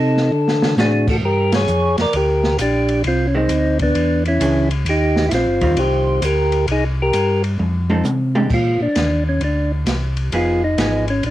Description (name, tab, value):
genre	soul jazz organ trio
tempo	132 BPM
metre	4/4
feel	swing 66% on 8ths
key	Bb mixolydian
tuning	A4 = 440 Hz
part	percussive tonewheel organ	melody	0.0-11.3 s	Cb4 to D5	-18 LUFS	equal	slow rotary speaker, cassette tape
part	mellow tonewheel organ	bass	0.0-11.3 s	F1 to D3	-19 LUFS	equal	slow rotary speaker
part	open jazz drum kit	drums	0.2-11.3 s	crash cymbal, hi-hat, kick drum, ride cymbal, snare drum, toms	-24 LUFS	equal	cassette tape
part	vintage hollow-body jazz guitar	accompaniment	0.8-11.1 s	D3 to C#5	-24 LUFS	right 2 dB	none
room	light reverb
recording	home recording on cassette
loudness	-15 LUFS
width	side -14 dB against mid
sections	0.0-8.5 A section; 8.5-11.3 B section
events	drum fill 0.3-0.8, 7.6-8.5; band accent 1.5; tonewheel organ solo 8.5-11.3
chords	0.3 D7; 1.2 Gm7; 3.0 Cmadd9; 4.0 E6; 4.9 Eb69; 6.7 Cm7; 7.6 F7; 8.5 Bbadd9; 10.3 Fm7b5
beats	0.32 0.78 | 1.23 1.68 2.14 2.59 | 3.05 3.50 3.96 4.41 | 4.86 5.32 5.77 6.23 | 6.68 7.13 7.59 8.04 | 8.50 8.96 9.41 9.87 | 10.32 10.78 11.23